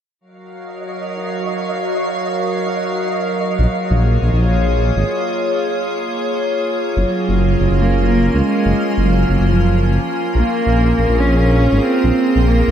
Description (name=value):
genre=IDM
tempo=142 BPM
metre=4/4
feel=straight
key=Gb major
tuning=A4 = 440 Hz
part: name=icy glass pad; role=sustained chords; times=0.5-12.7 s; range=Gb3 to F5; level=-19 LUFS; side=right 1 dB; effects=chorus, built-in reverb
part: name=flickering grainy texture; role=texture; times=0.7-5.3 s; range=Eb5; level=-29 LUFS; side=right 3 dB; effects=built-in reverb, lush chorus
part: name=dark detuned saw bass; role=bass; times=3.6-12.7 s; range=Gb1 to Db2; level=-15 LUFS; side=equal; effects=none
part: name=dark cello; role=melody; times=7.0-12.7 s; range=F3 to Db4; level=-18 LUFS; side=equal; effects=tape echo
room=moderate lush hall reverb, RT60 2.8 s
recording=dreamy mix soaked in reverb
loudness=-14 LUFS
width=side -9 dB against mid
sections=0.2-7.0 A section; 7.0-12.7 B section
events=break 5.3-7.0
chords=0.2 Gbmaj7; 3.6 Bbm7; 7.0 Gbmaj7; 10.3 Bbm7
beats=| 0.21 0.63 1.05 1.48 | 1.90 2.32 2.74 3.17 | 3.59 4.01 4.43 4.86 | 5.28 5.70 6.12 6.54 | 6.97 7.39 7.81 8.24 | 8.66 9.08 9.50 9.93 | 10.35 10.77 11.19 11.62 | 12.04 12.46